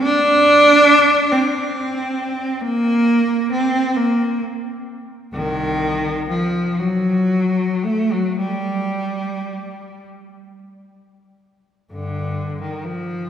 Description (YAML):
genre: classical, free, expressive piece for unaccompanied cello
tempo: 28-48 BPM (dotted quarters)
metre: 6/8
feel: rubato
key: G minor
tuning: A4 = 439 Hz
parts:
  - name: rich cello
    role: solo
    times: 0.0-13.3 s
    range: C2 to D4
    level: -16 LUFS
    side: equal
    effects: none
room: wet church reverb, RT60 3.1 s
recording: heard from further back in the room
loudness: -15 LUFS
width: side -9 dB against mid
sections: 0.0-11.9 A section; 11.9-13.3 B section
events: none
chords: none